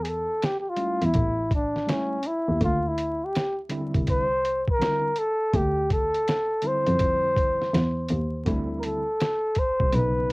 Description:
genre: hip hop, jazz-hop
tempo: 82 BPM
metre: 4/4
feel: swing 65% on 16ths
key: D minor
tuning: A4 = 440 Hz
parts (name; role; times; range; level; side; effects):
- trumpet with bucket mute; melody; 0.0-10.3 s; C#4 to C5; -25 LUFS; equal; none
- warm double bass; bass; 0.0-10.3 s; A1 to F2; -27 LUFS; equal; none
- dusty soul sampler-style drum kit; drums; 0.0-10.3 s; hi-hat, kick drum, snare drum; -27 LUFS; equal; cassette tape
- tine electric piano; accompaniment; 0.8-10.3 s; C#3 to E4; -31 LUFS; right 1 dB; overdrive, fast stereo tremolo, cassette tape
room: light reverb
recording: home recording on cassette, vinyl crackle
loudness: -22 LUFS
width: side -26 dB against mid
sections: 0.0-8.5 A section; 8.5-10.3 B section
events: muted trumpet solo 0.0-8.5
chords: 0.0 A7b13/E; 1.1 A7; 2.6 Dm9; 8.5 Dsus2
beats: 0.41 1.15 1.88 | 2.61 3.34 4.07 4.80 | 5.54 6.27 7.00 7.73 | 8.46 9.19 9.93

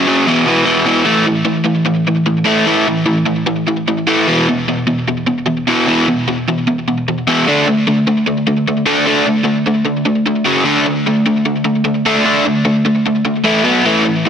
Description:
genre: punk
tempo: 150 BPM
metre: 4/4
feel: straight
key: unclear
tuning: A4 = 435 Hz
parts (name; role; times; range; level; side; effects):
- overdriven electric guitar; solo; 0.0-14.3 s; E2 to D4; -12 LUFS; equal; digital delay
room: moderate studio reverb, RT60 0.7 s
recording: dense, heavily limited modern master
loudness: -12 LUFS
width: side -8 dB against mid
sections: 0.0-1.1 A section; 1.1-14.3 B section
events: none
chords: 0.3 E5; 1.1 A5; 4.3 E5; 7.5 D5; 10.5 F#5; 10.7 D5; 13.5 A5; 13.7 B5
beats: 0.28 0.67 | 1.07 1.47 1.87 2.27 | 2.67 3.07 3.47 3.87 | 4.27 4.67 5.07 5.47 | 5.87 6.27 6.67 7.07 | 7.47 7.87 8.27 8.67 | 9.07 9.47 9.88 10.28 | 10.68 11.07 11.47 11.88 | 12.27 12.67 13.07 13.47 | 13.87 14.27

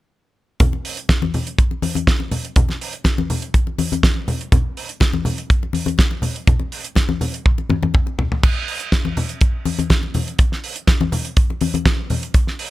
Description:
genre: disco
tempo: 123 BPM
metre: 4/4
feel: straight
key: none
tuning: none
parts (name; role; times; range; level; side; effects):
- damped 70s drum kit; drums; 0.6-12.7 s; crash cymbal, hi-hat, kick drum, snare drum, toms; -17 LUFS; equal; none
- congas; percussion; 0.6-12.2 s; none; -22 LUFS; left 3 dB; none
room: little or no reverb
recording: none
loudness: -17 LUFS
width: side -16 dB against mid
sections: 0.6-8.4 A section; 8.4-12.7 B section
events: drum fill 7.5-8.4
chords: none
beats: | 0.60 1.09 1.58 2.07 | 2.56 3.05 3.54 4.03 | 4.52 5.01 5.50 5.99 | 6.48 6.97 7.46 7.94 | 8.43 8.92 9.41 9.90 | 10.39 10.88 11.36 11.85 | 12.34

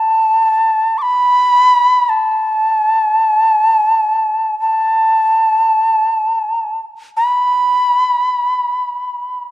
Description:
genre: japanese traditional, Japanese chamber music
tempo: free time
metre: none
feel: none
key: unclear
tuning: A4 = 441 Hz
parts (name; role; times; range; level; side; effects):
- bright reedy shakuhachi; solo; 0.0-9.5 s; A5 to D6; -12 LUFS; equal; none
room: light reverb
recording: dark, warm production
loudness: -11 LUFS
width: side -16 dB against mid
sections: 0.0-9.5 A section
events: none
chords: none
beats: free time

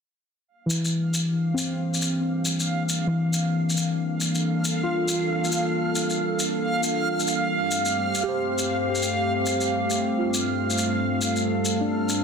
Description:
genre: future garage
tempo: 137 BPM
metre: 4/4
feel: swing 66% on 16ths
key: G dorian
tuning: A4 = 441 Hz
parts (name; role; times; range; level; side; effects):
- warbly tape-like pad; sustained chords; 1.0-12.2 s; G2 to A4; -28 LUFS; right 1 dB; chorus, built-in reverb
- backwards swelling texture; texture; 1.1-12.2 s; F5; -29 LUFS; right 2 dB; built-in reverb
- muted felt-like synth keys; accompaniment; 0.7-12.2 s; E3 to C5; -26 LUFS; left 1 dB; chorus, ping-pong delay
- shaker; drums; 0.7-12.2 s; none; -29 LUFS; left 2 dB; none
room: moderate lush hall reverb, RT60 1.5 s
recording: dense, heavily limited modern master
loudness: -22 LUFS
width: side -6 dB against mid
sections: 0.5-12.2 A section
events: fade-in on ambient pad 0.5-12.2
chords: 0.5 Gm7; 7.5 Fadd9/G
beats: | 0.48 0.92 1.36 1.80 | 2.24 2.67 3.11 3.55 | 3.99 4.43 4.86 5.30 | 5.74 6.18 6.62 7.05 | 7.49 7.93 8.37 8.81 | 9.24 9.68 10.12 10.56 | 11.00 11.43 11.87

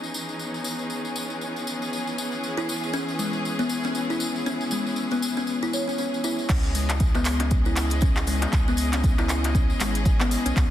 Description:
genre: afro house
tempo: 118 BPM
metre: 4/4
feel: swing 58% on 16ths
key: C# minor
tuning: A4 = 439 Hz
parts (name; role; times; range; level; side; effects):
- rich studio string section; sustained chords; 0.0-10.7 s; E3 to D#5; -30 LUFS; left 1 dB; sidechain pumping
- tambourine; percussion; 0.0-10.7 s; none; -35 LUFS; left 2 dB; none
- kalimba; arpeggios; 2.6-10.6 s; G#3 to C#5; -27 LUFS; left 1 dB; sidechain pumping, tape echo
- warm sub bass; bass; 6.5-10.7 s; G#1 to C#2; -26 LUFS; equal; sidechain pumping
- afro-pop drum kit; drums; 6.5-10.7 s; crash cymbal, handclaps, hi-hat; -30 LUFS; equal; none
- electronic kick drum; drums; 6.5-10.7 s; none; -22 LUFS; equal; none
- darbuka; percussion; 6.9-10.3 s; none; -36 LUFS; left 2 dB; none
room: light reverb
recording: dense, heavily limited modern master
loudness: -22 LUFS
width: side -12 dB against mid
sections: 0.0-6.5 A section; 6.5-10.7 B section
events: drop 6.5-10.7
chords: 0.0 C#m9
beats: | 0.39 0.90 1.41 1.92 | 2.43 2.94 3.44 3.95 | 4.46 4.97 5.48 5.99 | 6.50 7.00 7.51 8.02 | 8.53 9.04 9.55 10.05 | 10.56

